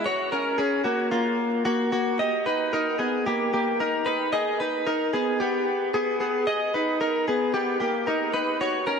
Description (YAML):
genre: indie pop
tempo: 112 BPM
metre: 4/4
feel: straight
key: unclear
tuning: A4 = 443 Hz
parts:
  - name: direct-recorded clean electric guitar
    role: solo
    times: 0.0-9.0 s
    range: A#3 to D#5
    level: -22 LUFS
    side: equal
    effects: lush chorus
room: wet huge ambient reverb, RT60 4.3 s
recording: dreamy mix soaked in reverb, vinyl crackle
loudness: -22 LUFS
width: side -6 dB against mid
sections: 0.1-9.0 A section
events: none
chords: 0.1 F#; 2.2 D#